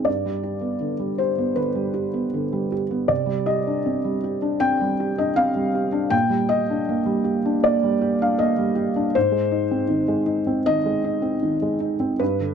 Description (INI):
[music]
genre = neoclassical minimalist piano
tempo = 79 BPM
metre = 4/4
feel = rubato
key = unclear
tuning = A4 = 441 Hz
[part]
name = felt-muted upright piano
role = solo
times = 0.0-12.5 s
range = G2 to G5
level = -20 LUFS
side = equal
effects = none
[sound]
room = little or no reverb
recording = close, detailed microphones, faint mains hum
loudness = -20 LUFS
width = side -7 dB against mid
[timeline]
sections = 0.0-12.5 A section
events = none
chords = 0.1 G; 3.1 Cmadd9; 6.1 Ebmaj7/Bb; 9.2 Ab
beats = | 0.07 0.83 1.59 2.35 | 3.10 3.86 4.62 5.38 | 6.13 6.89 7.64 8.40 | 9.15 9.90 10.67 11.44 | 12.21